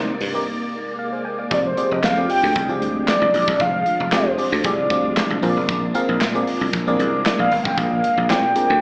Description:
early-eighties boogie funk; 115 BPM; 4/4; straight; F dorian; A4 = 444 Hz
FM electric piano; accompaniment; 0.0-8.7 s; C4 to Ab5; -26 LUFS; equal; chorus, phaser, slapback echo
soft string machine; sustained chords; 0.0-8.8 s; C3 to G5; -31 LUFS; equal; ensemble chorus
dry thumbed slap bass; bass; 0.2-8.8 s; F1 to Bb2; -25 LUFS; equal
modern studio drum kit; drums; 0.2-8.7 s; handclaps, hi-hat, kick drum, snare drum; -27 LUFS; equal
warm velvety synth lead; melody; 1.5-8.8 s; C5 to G5; -22 LUFS; equal; chorus, slapback echo
light reverb; live gig heard through the venue's PA, club reverb, AM radio sound; -20 LUFS; mono
0.0-1.5 A section; 1.5-8.8 B section
break 0.5-1.5; FM electric piano fill 0.7-1.5
0.5 Bb7; 1.5 Fm69

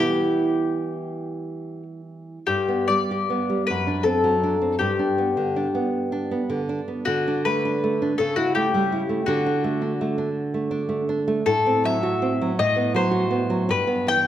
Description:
romantic duo for mandolin and classical guitar; 46-56 BPM (dotted quarters); 6/8; rubato; G major; A4 = 437 Hz
mandolin; melody; 0.0-14.3 s; F#4 to G5; -23 LUFS; left 5 dB
nylon-string guitar; accompaniment; 0.0-14.3 s; F#2 to G4; -23 LUFS; right 3 dB
wet recital hall reverb, RT60 1.6 s; -20 LUFS; side -11 dB against mid
0.0-2.5 A section; 2.5-14.3 B section
0.0 Em; 2.5 G; 3.7 D7/F#; 4.8 G; 7.1 D5; 8.2 A7/C#; 9.2 D; 11.5 F#m7b5/A; 12.6 B5/A; 13.7 Em/G

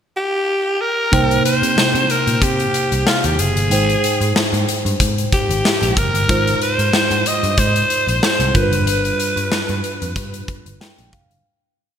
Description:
1980s-style pop; 93 BPM; 4/4; swing 55% on 16ths; C minor; A4 = 440 Hz
breathy alto saxophone; melody; 0.2-10.8 s; F4 to Eb5; -19 LUFS; equal; digital delay
mellow tine electric piano; accompaniment; 1.1-11.5 s; G2 to G5; -22 LUFS; right 1 dB; analog chorus
vintage muted picked electric bass; bass; 1.1-11.4 s; F1 to C3; -21 LUFS; equal
big rock drum kit; drums; 1.1-11.4 s; hi-hat, kick drum, snare drum; -19 LUFS; left 1 dB
moderate lush hall reverb, RT60 1.9 s, small room reverb; bright 1980s-style digital production; -14 LUFS; side -8 dB against mid
0.0-1.1 pickup bar; 1.1-11.5 verse
fade-out 8.9-11.5; tine electric piano fill 10.5-11.5
0.0 N.C.; 1.1 Cm7; 3.7 Abmaj7; 6.3 Fm7/Ab; 8.6 G7

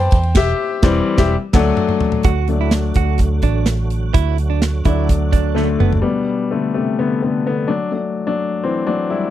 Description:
piano-driven pop; 127 BPM; 4/4; straight; A4 = 440 Hz
clear baby grand piano; accompaniment; 0.0-9.3 s; B2 to A5; -18 LUFS; left 5 dB
vintage muted fingered electric bass; bass; 0.0-6.0 s; E1 to E2; -18 LUFS; right 1 dB
modern studio drum kit; drums; 0.0-6.0 s; crash cymbal, hi-hat, kick drum, ride cymbal, snare drum, toms; -16 LUFS; right 1 dB
direct-recorded clean electric guitar; riff; 2.2-5.9 s; A3 to F#4; -22 LUFS; right 18 dB
tonewheel organ; sustained chords; 2.3-6.0 s; D3 to F#4; -29 LUFS; right 5 dB; chorus vibrato, slow rotary speaker
little or no reverb; dry, close 1970s-style studio recording; -15 LUFS; side -12 dB against mid
0.0-2.3 A section; 2.3-6.0 B section; 6.0-9.3 C section
grand piano solo 0.0-2.3, 2.3-6.0, 6.0-9.3; band accent 0.4-2.3; drum fill 1.3-2.3, 5.6-6.0
0.1 C/E; 1.3 D; 6.0 G; 7.7 D

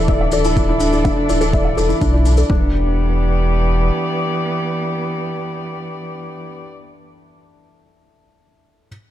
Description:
piano and strings electronica; 124 BPM; 4/4; straight; E minor; A4 = 440 Hz
dark string quartet; sustained chords; 0.0-6.7 s; E3 to D5; -22 LUFS; right 1 dB; sidechain pumping
felt-muted upright piano; riff; 0.0-8.9 s; D4 to E5; -22 LUFS; left 2 dB; tape echo
warm sub bass; bass; 0.0-3.9 s; D1 to B1; -17 LUFS; equal; sidechain pumping
wide unison pluck; arpeggios; 0.1-2.7 s; D4 to D6; -27 LUFS; left 4 dB
electronic kick drum; drums; 0.1-2.6 s; -19 LUFS; equal; overdrive
shaker; drums; 0.1-2.5 s; -31 LUFS; left 2 dB
light reverb; dark, warm production; -15 LUFS; side -12 dB against mid
0.0-2.5 A section; 2.5-6.4 B section
filter sweep on sub bass 0.0-2.5; filter sweep on synth arpeggio sound 0.0-2.5
0.0 Dsus2; 2.5 Em7

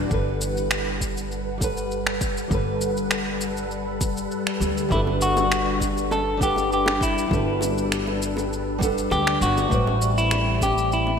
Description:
sunset chillout; 100 BPM; 4/4; straight; A4 = 440 Hz
nylon-string guitar; accompaniment; 0.0-11.2 s; G3 to F#5; -28 LUFS; right 1 dB; auto-pan, ping-pong delay
soft string machine; sustained chords; 0.0-11.2 s; G3 to F#5; -29 LUFS; left 2 dB; phaser, ensemble chorus, vintage 12-bit sampler grit
upright bass; bass; 0.0-11.2 s; G1 to D2; -28 LUFS; equal
electronic kick drum; drums; 0.1-10.7 s; -27 LUFS; equal
electronic shaker and finger snaps; drums; 0.1-11.0 s; -29 LUFS; equal; gated reverb
semi-hollow electric guitar; melody; 4.9-11.2 s; E4 to A4; -23 LUFS; left 1 dB; ping-pong delay
bongos; percussion; 5.1-11.2 s; -34 LUFS; right 1 dB
moderate lush hall reverb, RT60 2.5 s; bright 1980s-style digital production; -21 LUFS; side -6 dB against mid
0.0-11.2 A section
0.1 Gmaj9; 9.7 Am11

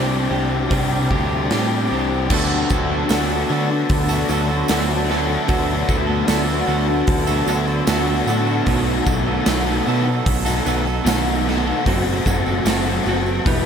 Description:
rock, shoegaze and dream pop; 75 BPM; 4/4; straight; A4 = 439 Hz
direct-recorded clean electric guitar; riff; 0.0-13.7 s; B2 to B4; -22 LUFS; right 8 dB; reverse reverb
overdriven electric guitar; riff; 0.0-13.7 s; E2 to G4; -22 LUFS; left 6 dB; ensemble chorus
growling picked electric bass; bass; 0.0-13.7 s; E1 to D3; -23 LUFS; equal; overdrive
big rock drum kit; drums; 0.7-13.6 s; crash cymbal, hi-hat, kick drum, snare drum; -24 LUFS; right 1 dB
tambourine; percussion; 2.3-13.6 s; -37 LUFS; right 8 dB
wet huge ambient reverb, RT60 7.1 s; dreamy mix soaked in reverb; -16 LUFS; side -7 dB against mid
0.0-2.3 A section; 2.3-13.7 B section
0.0 Csus2; 2.3 D6; 8.7 B7; 11.9 F#dim

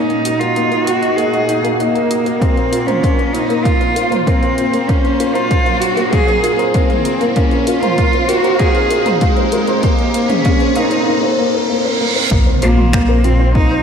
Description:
piano and strings electronica; 97 BPM; 4/4; straight; Bb minor; A4 = 445 Hz
clear cello; melody; 0.0-13.8 s; Ab3 to Ab4; -17 LUFS; equal; low-pass filter, ping-pong delay, shimmer reverb
lush unison pad; sustained chords; 0.0-13.8 s; Bb2 to F5; -24 LUFS; right 2 dB; chorus, shimmer reverb
dark upright piano; riff; 0.0-13.8 s; Bb3 to Eb5; -18 LUFS; equal; lush chorus, ping-pong delay, shimmer reverb
riser, reverse cymbal and impact; sound effects; 0.1-13.8 s; -24 LUFS; right 1 dB
soft round pluck; arpeggios; 0.1-13.8 s; Bb4 to G6; -25 LUFS; left 1 dB; chorus, sidechain pumping, ping-pong delay, shimmer reverb
deep house drum kit; drums; 0.1-13.4 s; finger snaps, hi-hat, toms; -26 LUFS; equal; overdrive
electronic kick drum; drums; 2.4-13.7 s; -16 LUFS; equal; overdrive
round analog bass; bass; 12.3-13.8 s; Bb1; -14 LUFS; equal; sidechain pumping
wet lush hall reverb, RT60 2.1 s; dreamy mix soaked in reverb; -12 LUFS; side -7 dB against mid
0.0-12.3 A section; 12.3-13.8 B section
build-up 0.0-12.3; filter sweep on synth arpeggio sound 0.0-12.3; filter sweep on cello 0.0-12.3; riser 0.1-12.3; reverse cymbal 11.1-12.3; drop 12.3-13.8; impact 12.3-13.8
0.0 Ebm/Bb; 2.4 Bbsus2; 4.9 Gbadd9/Bb; 7.4 Bb9sus4; 9.8 Eb5/Bb; 12.3 Bbsus2

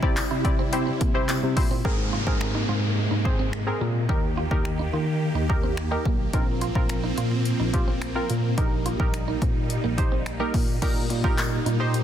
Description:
dance-pop; 107 BPM; 4/4; straight; A4 = 440 Hz
glassy wavetable pluck; accompaniment; 0.0-12.0 s; C4 to D5; -30 LUFS; equal; chorus, sidechain pumping
supersaw chords; sustained chords; 0.0-12.0 s; C3 to G4; -31 LUFS; right 2 dB; phaser, sidechain pumping
tine electric piano; bass; 0.0-12.0 s; Bb1 to Eb3; -27 LUFS; left 1 dB; overdrive, fast stereo tremolo, sidechain pumping
punchy analog drum machine; drums; 0.0-12.0 s; crash cymbal, finger snaps, handclaps, hi-hat, kick drum; -25 LUFS; equal; soft clipping on snare
tambourine; percussion; 0.2-1.4, 11.4-11.5 s; -39 LUFS; left 10 dB
clean electric guitar; riff; 0.3-12.0 s; Bb3 to F4; -33 LUFS; right 7 dB; lush chorus
downlifter; sound effects; 1.8-6.3 s; -34 LUFS; equal
little or no reverb; dense, heavily limited modern master; -22 LUFS; side -10 dB against mid
0.0-1.8 A section; 1.8-10.8 B section; 10.8-12.0 C section
0.0 C; 1.8 Abadd9; 4.1 Eb; 6.3 Bbsus2

